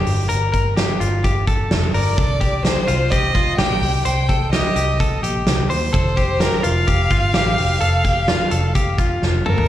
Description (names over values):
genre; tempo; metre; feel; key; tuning
jangly indie pop; 128 BPM; 4/4; straight; unclear; A4 = 440 Hz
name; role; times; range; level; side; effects
direct-recorded clean electric guitar; arpeggios; 0.0-9.7 s; F4 to C5; -24 LUFS; left 3 dB; slapback echo
vintage muted fingered electric bass; bass; 0.0-9.7 s; F1 to Eb2; -20 LUFS; equal; none
loose indie drum kit; drums; 0.1-9.7 s; hi-hat, kick drum, snare drum, toms; -20 LUFS; equal; none
warm violin; melody; 1.9-9.7 s; Bb4 to G5; -22 LUFS; equal; slapback echo
room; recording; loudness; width
light reverb; live gig heard through the venue's PA, recital hall reverb; -16 LUFS; side -12 dB against mid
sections
0.0-9.7 A section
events
drum fill 9.2-9.7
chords
0.0 Gmadd9; 2.2 Cm; 5.9 F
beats
| 0.30 0.77 1.24 1.71 | 2.18 2.65 3.12 3.59 | 4.06 4.53 5.00 5.47 | 5.94 6.41 6.88 7.34 | 7.82 8.29 8.76 9.22